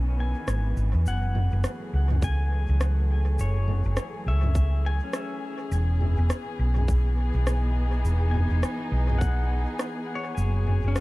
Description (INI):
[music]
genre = ambient dub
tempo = 103 BPM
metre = 4/4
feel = swing 60% on 16ths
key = F# dorian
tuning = A4 = 440 Hz
[part]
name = muted chamber string section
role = sustained chords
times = 0.0-11.0 s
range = D#3 to G#4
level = -34 LUFS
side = left 1 dB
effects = vintage 12-bit sampler grit
[part]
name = pedal steel guitar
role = arpeggios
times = 0.0-11.0 s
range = C#4 to G#5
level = -36 LUFS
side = left 4 dB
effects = dub echo
[part]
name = hollow-body short-scale fingered electric bass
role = bass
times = 0.0-10.9 s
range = E1 to E2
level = -23 LUFS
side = equal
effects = none
[part]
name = organic electronic drum kit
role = drums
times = 0.5-11.0 s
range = cabasa, rim click, toms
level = -32 LUFS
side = equal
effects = overdrive, dub echo
[part]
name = electronic kick drum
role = drums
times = 2.2-9.4 s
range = none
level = -26 LUFS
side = equal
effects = overdrive
[sound]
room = little or no reverb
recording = dark, warm production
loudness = -23 LUFS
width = side -20 dB against mid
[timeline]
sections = 0.0-11.0 A section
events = none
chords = 0.0 Emaj7; 1.1 F#m9; 5.7 Emaj7; 10.4 F#sus2